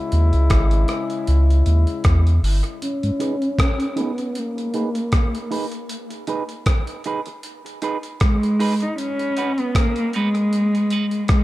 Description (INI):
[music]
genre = dub reggae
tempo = 78 BPM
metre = 4/4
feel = swing 56% on 16ths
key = G# minor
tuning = A4 = 440 Hz
[part]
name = brilliant trombone section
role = second line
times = 0.0-2.4 s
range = C#3 to E4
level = -27 LUFS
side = left 4 dB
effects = dub echo
[part]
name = warm sub bass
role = bass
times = 0.1-2.6 s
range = G1 to E2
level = -15 LUFS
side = equal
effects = none
[part]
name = breakbeat sampler-style drum kit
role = drums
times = 0.1-11.4 s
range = hi-hat, kick drum, rim click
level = -22 LUFS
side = equal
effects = none
[part]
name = rich cello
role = melody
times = 2.8-11.4 s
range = G#3 to D#4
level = -21 LUFS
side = equal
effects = low-pass filter, dub echo
[part]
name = mellow tonewheel organ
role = accompaniment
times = 3.0-3.1 s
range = G#2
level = -25 LUFS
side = equal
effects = chorus vibrato, slow rotary speaker, low-pass filter
[part]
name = electric guitar at the edge of break-up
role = accompaniment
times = 3.2-11.1 s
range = D#4 to B4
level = -29 LUFS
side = right 5 dB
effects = high-pass filter, low-pass filter, dub echo
[sound]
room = moderate spring reverb, RT60 2.1 s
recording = dark, warm production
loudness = -18 LUFS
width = side -17 dB against mid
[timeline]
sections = 0.0-2.8 A section; 2.8-11.4 B section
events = break 0.0-2.8, 2.8-11.4; filter sweep 2.8-11.4; filter sweep on clean electric guitar 5.9-11.4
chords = 0.0 C#m; 2.8 G#m; 9.0 B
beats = 0.51 1.28 2.05 | 2.82 3.59 4.36 5.13 | 5.90 6.67 7.44 8.21 | 8.98 9.75 10.52 11.29